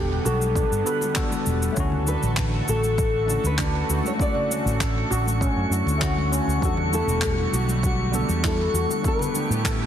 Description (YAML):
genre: sunset chillout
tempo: 99 BPM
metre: 4/4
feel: straight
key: E dorian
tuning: A4 = 440 Hz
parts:
  - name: nylon-string guitar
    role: melody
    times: 0.0-9.9 s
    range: E4 to D5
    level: -28 LUFS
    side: left 2 dB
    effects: tape echo
  - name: tine electric piano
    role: accompaniment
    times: 0.0-9.9 s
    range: D3 to C#5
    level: -30 LUFS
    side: moving between left 6 dB and right 4 dB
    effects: auto-pan, tape echo
  - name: lush unison pad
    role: sustained chords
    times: 0.0-9.9 s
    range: D3 to F#5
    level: -30 LUFS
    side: equal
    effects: chorus
  - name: steel pan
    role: arpeggios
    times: 0.0-9.9 s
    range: C#4 to B4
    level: -32 LUFS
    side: right 4 dB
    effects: tape echo
  - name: mellow fretless electric bass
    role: bass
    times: 0.0-9.9 s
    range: E1 to A2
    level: -25 LUFS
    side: equal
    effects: none
  - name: congas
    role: percussion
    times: 0.2-9.5 s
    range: none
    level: -36 LUFS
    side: left 3 dB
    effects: none
  - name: cabasa and handclaps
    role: drums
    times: 0.3-9.8 s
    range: none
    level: -30 LUFS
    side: equal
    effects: soft clipping on snare
  - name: electronic kick drum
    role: drums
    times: 0.6-9.8 s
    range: none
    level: -27 LUFS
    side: equal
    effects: overdrive
  - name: drifting glass-harmonics texture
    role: texture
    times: 2.2-9.9 s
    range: C#6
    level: -34 LUFS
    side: equal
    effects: chorus, built-in reverb
room: light reverb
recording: dense, heavily limited modern master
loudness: -20 LUFS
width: side -10 dB against mid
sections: 0.0-9.9 A section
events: none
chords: 0.0 Em11; 1.8 Dmaj7; 6.6 Em11; 9.0 A9sus4